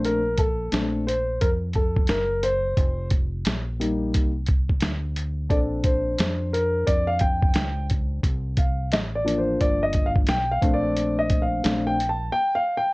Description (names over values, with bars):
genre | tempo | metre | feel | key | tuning
hip hop, jazz-hop | 88 BPM | 4/4 | swing 61% on 16ths | Bb major | A4 = 441 Hz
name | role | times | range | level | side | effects
dark grand piano | accompaniment | 0.0-12.9 s | F3 to A5 | -24 LUFS | left 1 dB | none
deep dub fingered electric bass | bass | 0.0-12.3 s | F1 to F2 | -28 LUFS | equal | none
lo-fi sampler-style drum kit | drums | 0.0-12.2 s | hi-hat, kick drum, snare drum | -23 LUFS | equal | vintage 12-bit sampler grit
room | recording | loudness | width
light reverb | worn, warbling old tape, cassette tape, warbly pitch drift | -21 LUFS | side -23 dB against mid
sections
0.0-12.9 A section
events
grand piano solo 0.0-12.9; drums muted 12.3-12.9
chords
0.0 Bbmaj7; 2.8 F9sus4; 5.5 Bbmaj7; 8.2 C7sus4; 10.6 Bbmaj7